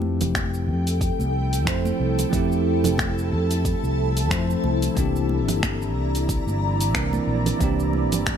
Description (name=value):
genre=sunset chillout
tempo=91 BPM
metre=4/4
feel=swing 57% on 16ths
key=F major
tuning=A4 = 440 Hz
part: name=bell-like tine electric piano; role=accompaniment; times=0.0-8.4 s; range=E3 to C5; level=-26 LUFS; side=moving between left 8 dB and right 8 dB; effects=auto-pan, ping-pong delay
part: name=ethereal airy pad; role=sustained chords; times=0.5-8.4 s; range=E4 to Bb5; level=-28 LUFS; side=equal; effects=ensemble chorus, built-in reverb, phaser
part: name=mellow fretless electric bass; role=bass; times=0.0-8.4 s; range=F1 to F2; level=-24 LUFS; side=equal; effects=tube saturation
part: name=congas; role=percussion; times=0.0-8.4 s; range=none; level=-31 LUFS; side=right 4 dB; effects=none
part: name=deep house drum kit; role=drums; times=0.2-8.4 s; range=cabasa, finger snaps, hi-hat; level=-29 LUFS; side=equal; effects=none
part: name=electronic kick drum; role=drums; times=0.3-8.4 s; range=none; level=-28 LUFS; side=equal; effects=none
room=light reverb, digital ambience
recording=none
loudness=-20 LUFS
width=side -8 dB against mid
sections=0.0-8.4 A section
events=none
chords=0.0 Fmaj9; 5.0 C9